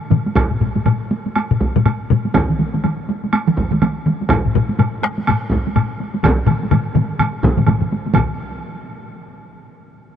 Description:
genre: japanese traditional, taiko drum ensemble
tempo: 124 BPM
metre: 4/4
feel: swing 60% on 16ths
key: none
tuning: none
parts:
  - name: taiko ensemble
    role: percussion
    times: 0.1-8.4 s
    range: none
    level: -23 LUFS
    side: right 1 dB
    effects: none
  - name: taiko ensemble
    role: percussion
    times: 0.1-8.6 s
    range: none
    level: -18 LUFS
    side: left 3 dB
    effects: none
  - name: taiko ensemble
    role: percussion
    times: 0.1-8.6 s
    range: none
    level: -20 LUFS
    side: right 2 dB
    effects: none
  - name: taiko ensemble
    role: percussion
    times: 0.4-8.4 s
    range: none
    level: -21 LUFS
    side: right 1 dB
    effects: none
  - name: woodblock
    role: percussion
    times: 0.4-8.4 s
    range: none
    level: -26 LUFS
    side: right 3 dB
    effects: none
room: moderate huge ambient reverb, RT60 5.1 s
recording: none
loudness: -15 LUFS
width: side -9 dB against mid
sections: 0.0-8.1 A section; 8.1-10.0 B section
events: speeding up 0.0-10.0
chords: none

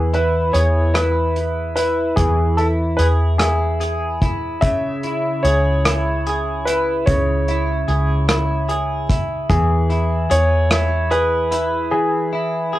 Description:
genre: six-eight pop ballad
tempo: 49 BPM (dotted quarters)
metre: 6/8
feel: straight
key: unclear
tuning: A4 = 439 Hz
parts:
  - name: clear grand piano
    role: melody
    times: 0.0-12.8 s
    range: G#4 to E5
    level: -21 LUFS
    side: left 1 dB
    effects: cassette tape
  - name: direct-recorded clean electric guitar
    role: accompaniment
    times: 0.0-12.8 s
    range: C#3 to G#4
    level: -22 LUFS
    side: equal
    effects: double-tracked left and right, cassette tape
  - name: vintage muted fingered electric bass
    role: bass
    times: 0.0-11.9 s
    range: C#2 to E2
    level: -20 LUFS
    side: equal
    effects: none
  - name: unplugged drum kit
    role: drums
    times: 0.1-11.7 s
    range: hi-hat, kick drum, rim click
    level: -21 LUFS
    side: equal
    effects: none
room: little or no reverb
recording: home recording on cassette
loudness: -16 LUFS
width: side -15 dB against mid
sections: 0.0-12.8 A section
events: none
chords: 0.0 E; 4.6 C#m; 9.5 E

